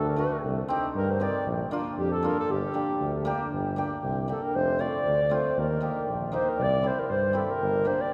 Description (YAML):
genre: klezmer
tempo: 117 BPM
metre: 2/4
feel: straight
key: G minor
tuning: A4 = 440 Hz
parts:
  - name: dark clarinet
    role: melody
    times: 0.0-8.1 s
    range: G4 to D5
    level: -32 LUFS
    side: equal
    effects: none
  - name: mellow trombone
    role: second line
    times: 0.0-8.1 s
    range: G4 to D5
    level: -36 LUFS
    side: equal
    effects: none
  - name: clear tuba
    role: bass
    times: 0.0-7.9 s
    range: F1 to G2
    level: -33 LUFS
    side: equal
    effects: none
  - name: hammered dulcimer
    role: accompaniment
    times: 0.2-8.0 s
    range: A3 to G4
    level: -33 LUFS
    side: equal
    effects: none
room: wet cathedral reverb, RT60 7.3 s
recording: recorded in a church or concert hall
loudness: -27 LUFS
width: mono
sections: 0.0-3.5 A section; 3.5-8.1 B section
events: clarinet solo 3.5-8.1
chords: 0.4 Cm; 1.5 Bb; 2.5 Gm; 4.5 F; 5.6 Eb; 6.6 C; 7.6 Gm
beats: | 0.45 0.96 | 1.47 1.98 | 2.49 3.00 | 3.51 4.03 | 4.54 5.05 | 5.56 6.07 | 6.58 7.09 | 7.60 8.11